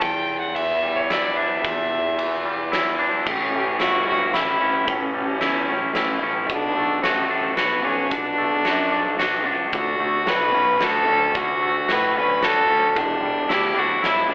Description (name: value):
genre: post-rock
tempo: 111 BPM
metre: 3/4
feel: straight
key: E dorian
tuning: A4 = 440 Hz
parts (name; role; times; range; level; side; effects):
- warm violin; melody; 0.0-14.3 s; A3 to G5; -22 LUFS; equal; none
- twangy electric guitar; arpeggios; 0.0-14.3 s; E2 to F#4; -24 LUFS; equal; slapback echo
- fuzz fingered electric bass; bass; 0.0-14.3 s; E1 to A2; -26 LUFS; equal; overdrive
- huge arena drum kit; drums; 0.0-14.2 s; crash cymbal, hi-hat, kick drum, ride cymbal, snare drum; -26 LUFS; equal; none
room: wet large studio reverb, RT60 1.2 s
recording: band playing live in one room, telephone sound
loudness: -18 LUFS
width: side -26 dB against mid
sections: 0.0-3.3 A section; 3.3-14.3 B section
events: none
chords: 0.0 Em7; 3.3 A7; 6.5 Bm7; 9.7 Dmaj7; 13.0 Em7